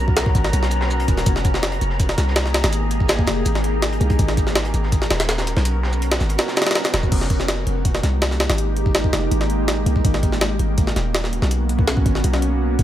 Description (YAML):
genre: drum and bass, jungle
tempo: 164 BPM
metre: 4/4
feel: straight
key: unclear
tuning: A4 = 440 Hz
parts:
  - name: granular cloud pad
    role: sustained chords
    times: 0.0-12.8 s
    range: Ab3 to Bb4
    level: -25 LUFS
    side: equal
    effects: built-in reverb
  - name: warm 808-style bass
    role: bass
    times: 0.0-12.8 s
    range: Eb1 to C2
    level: -21 LUFS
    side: equal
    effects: none
  - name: wind-like tuned noise texture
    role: texture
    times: 0.0-7.1 s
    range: Bb5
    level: -32 LUFS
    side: left 1 dB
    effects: built-in reverb
  - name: jungle sampler-style drum kit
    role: drums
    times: 0.1-12.8 s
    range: crash cymbal, hi-hat, kick drum, snare drum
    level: -20 LUFS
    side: equal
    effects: none
  - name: crunchy breakbeat drum kit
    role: drums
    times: 0.2-7.1 s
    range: hi-hat, shaker, snare drum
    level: -32 LUFS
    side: right 3 dB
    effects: high-pass filter on hats, high-pass filter on snare, high-pass filter on perc, high-pass filter on room
room: light reverb, studio reverb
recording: none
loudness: -17 LUFS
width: side -12 dB against mid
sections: 0.0-7.1 A section; 7.1-12.8 A section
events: drop 0.0-7.1, 7.1-12.8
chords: 0.0 Abm11; 1.3 Fm11; 4.2 Abm11; 7.1 Fm11; 10.0 Abm11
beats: 0.17 0.53 0.90 | 1.26 1.63 2.00 2.36 | 2.73 3.09 3.46 3.83 | 4.19 4.56 4.92 5.29 | 5.66 6.02 6.39 6.75 | 7.12 7.48 7.85 8.22 | 8.58 8.95 9.31 9.68 | 10.04 10.41 10.78 11.14 | 11.51 11.87 12.24 12.61